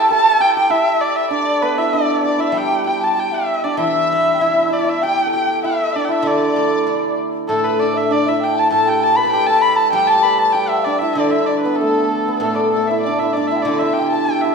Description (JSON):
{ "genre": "chinese traditional, Chinese chamber ensemble", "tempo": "98 BPM", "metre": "2/4", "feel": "rubato", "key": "D zhi mode", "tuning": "A4 = 440 Hz", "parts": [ { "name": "dark erhu", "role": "melody", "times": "0.0-14.5 s", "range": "A4 to B5", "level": "-19 LUFS", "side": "left 1 dB", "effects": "none" }, { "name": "hammered dulcimer", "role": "second line", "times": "0.0-14.5 s", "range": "A3 to D5", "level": "-19 LUFS", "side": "right 2 dB", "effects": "none" }, { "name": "mellow hollow large dizi", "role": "second line", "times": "0.0-14.5 s", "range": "A4 to B5", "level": "-21 LUFS", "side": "left 2 dB", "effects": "none" }, { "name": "steel-string zither", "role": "accompaniment", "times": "2.5-14.5 s", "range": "A2 to E4", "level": "-23 LUFS", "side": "right 1 dB", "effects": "none" } ], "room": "wet recital hall reverb, RT60 1.6 s", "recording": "recorded in a church or concert hall", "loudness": "-14 LUFS", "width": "side -5 dB against mid", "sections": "0.0-7.5 A section; 7.5-14.5 B section", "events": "none", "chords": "none" }